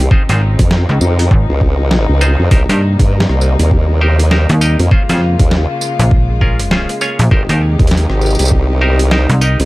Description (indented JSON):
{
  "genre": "glitch hop",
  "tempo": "100 BPM",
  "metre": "4/4",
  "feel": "swing 61% on 16ths",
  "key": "C phrygian",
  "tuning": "A4 = 440 Hz",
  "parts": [
    { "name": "dark chamber string section", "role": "sustained chords", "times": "0.0-9.7 s", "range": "C3 to G4", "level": "-21 LUFS", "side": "left 2 dB", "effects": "sidechain pumping" },
    { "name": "formant-sweep wobble bass", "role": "bass", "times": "0.0-9.7 s", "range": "Ab1 to G2", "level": "-12 LUFS", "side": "equal", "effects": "chorus, tube saturation" },
    { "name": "bright clav", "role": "stabs", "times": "0.1-9.6 s", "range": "Db4 to Eb5", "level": "-20 LUFS", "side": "equal", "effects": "sidechain pumping, digital delay" },
    { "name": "electronic kick drum", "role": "drums", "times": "0.1-8.7 s", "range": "none", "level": "-12 LUFS", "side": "equal", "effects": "overdrive" },
    { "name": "slap-like FM bass", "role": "bass", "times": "0.3-9.6 s", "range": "Ab1 to G2", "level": "-12 LUFS", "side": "equal", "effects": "none" },
    { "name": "boom bap sampler-style drum kit", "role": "drums", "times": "0.3-9.7 s", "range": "hi-hat, rim click, snare drum, tambourine", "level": "-18 LUFS", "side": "equal", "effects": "overdrive" }
  ],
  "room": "little or no reverb",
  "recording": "none",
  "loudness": "-10 LUFS",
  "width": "side -19 dB against mid",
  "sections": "0.0-9.7 A section",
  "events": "none",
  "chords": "0.1 Dbmaj9; 2.5 Cm7; 4.9 Bbm7; 7.3 Abmaj7"
}